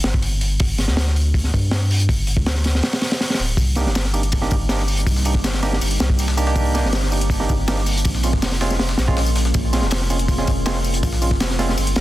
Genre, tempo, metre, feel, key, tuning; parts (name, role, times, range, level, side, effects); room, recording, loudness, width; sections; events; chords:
drum and bass, jungle; 161 BPM; 4/4; straight; A4 = 440 Hz
saturated sub bass; bass; 0.0-12.0 s; D1 to G2; -20 LUFS; equal
crunchy breakbeat drum kit; drums; 0.0-12.0 s; hi-hat, kick drum, snare drum; -21 LUFS; equal
warbly tape-like pad; sustained chords; 4.1-12.0 s; G3 to F4; -29 LUFS; right 1 dB; chorus, built-in reverb
breakbeat sampler-style drum kit; drums; 3.6-12.0 s; hi-hat, snare drum, tambourine; -30 LUFS; left 2 dB; high-pass filter on perc, high-pass filter on snare, high-pass filter on hats
barky tine electric piano; stabs; 3.8-11.7 s; Ab3 to G4; -26 LUFS; right 4 dB; overdrive, vintage 12-bit sampler grit, dub echo
light reverb, small room ambience; dense, heavily limited modern master; -17 LUFS; side -16 dB against mid
0.0-12.0 A section
0.0 G5; 3.6 Cm7; 8.1 Bbm7